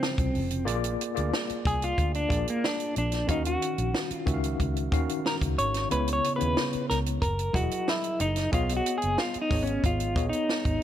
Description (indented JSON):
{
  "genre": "lush 1970s-style soul",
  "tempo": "92 BPM",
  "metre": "4/4",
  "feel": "straight",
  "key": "Bb minor",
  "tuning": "A4 = 441 Hz",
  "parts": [
    { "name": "clean electric guitar", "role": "melody", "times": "0.0-10.8 s", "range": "Bb3 to Db5", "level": "-29 LUFS", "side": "equal", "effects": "tremolo" },
    { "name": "tine electric piano", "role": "accompaniment", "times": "0.0-10.8 s", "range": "Db3 to F5", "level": "-32 LUFS", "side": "left 3 dB", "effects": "overdrive, fast stereo tremolo" },
    { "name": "compact cocktail drum kit", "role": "drums", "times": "0.0-10.8 s", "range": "hi-hat, kick drum, snare drum", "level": "-30 LUFS", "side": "right 1 dB", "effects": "none" },
    { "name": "vintage muted fingered electric bass", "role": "bass", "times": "0.2-10.8 s", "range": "Fb1 to Eb2", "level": "-30 LUFS", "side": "equal", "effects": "none" }
  ],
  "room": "light reverb, small room ambience",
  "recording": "none",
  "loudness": "-25 LUFS",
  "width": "side -11 dB against mid",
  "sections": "0.0-10.8 A section",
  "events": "clean electric guitar solo 0.0-10.8",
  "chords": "0.0 Dbmaj7; 0.7 Bb7; 3.3 Ebm9; 5.9 Dbm7; 7.2 Gb13; 8.5 B69"
}